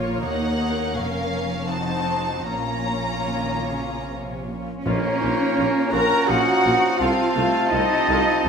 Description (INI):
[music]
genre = classical, slow romantic movement for symphony orchestra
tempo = 74-85 BPM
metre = 3/4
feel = rubato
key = Bb minor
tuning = A4 = 440 Hz
[part]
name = warm studio violin section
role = second line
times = 0.0-8.5 s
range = F4 to Bb5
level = -28 LUFS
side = left 1 dB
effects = none
[part]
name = warm studio viola section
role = accompaniment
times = 0.0-8.2 s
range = A3 to F4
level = -30 LUFS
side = left 1 dB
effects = none
[part]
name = dark studio cello section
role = bass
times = 0.0-8.5 s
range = Eb2 to Bb4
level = -26 LUFS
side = right 1 dB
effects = none
[part]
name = dark studio double bass section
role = bass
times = 0.0-8.5 s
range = F1 to Eb2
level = -31 LUFS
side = right 1 dB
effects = none
[part]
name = dark studio violin section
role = melody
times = 0.2-8.5 s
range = Db5 to Bb5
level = -29 LUFS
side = left 2 dB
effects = none
[part]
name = clear oboe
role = second line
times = 4.9-8.5 s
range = Bb3 to Gb4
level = -29 LUFS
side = right 1 dB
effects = none
[part]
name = hollow concert flute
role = second line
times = 4.9-8.5 s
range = Db5 to Bb5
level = -26 LUFS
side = left 3 dB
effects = none
[part]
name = mellow clarinet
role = second line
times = 4.9-8.5 s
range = A3 to F4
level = -29 LUFS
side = equal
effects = none
[part]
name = clear trombone section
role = sustained chords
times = 4.9-8.5 s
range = Bb2 to F3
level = -30 LUFS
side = right 1 dB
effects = none
[part]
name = mellow French horn section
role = sustained chords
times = 4.9-8.5 s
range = C4 to F4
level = -30 LUFS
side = left 3 dB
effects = none
[part]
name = mellow trumpet section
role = stabs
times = 4.9-8.5 s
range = A5 to Bb5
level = -25 LUFS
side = right 2 dB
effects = none
[part]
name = mellow tuba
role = bass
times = 4.9-8.5 s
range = Bb1 to C2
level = -30 LUFS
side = right 3 dB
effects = none
[part]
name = timpani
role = percussion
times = 4.9-5.9 s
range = Bb2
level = -30 LUFS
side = right 2 dB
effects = none
[sound]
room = wet stone room reverb, RT60 1.4 s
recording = minimal, uncompressed stereo recording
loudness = -19 LUFS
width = side -6 dB against mid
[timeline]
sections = 0.0-4.9 A section; 4.9-8.5 A section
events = none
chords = 0.2 Ebm7; 1.0 Bbm/F; 1.7 F7b9; 2.5 Bbm; 7.0 F7/C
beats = | 0.23 0.96 1.71 | 2.50 3.31 4.12 | 4.87 5.58 6.29 | 7.00 7.72 8.46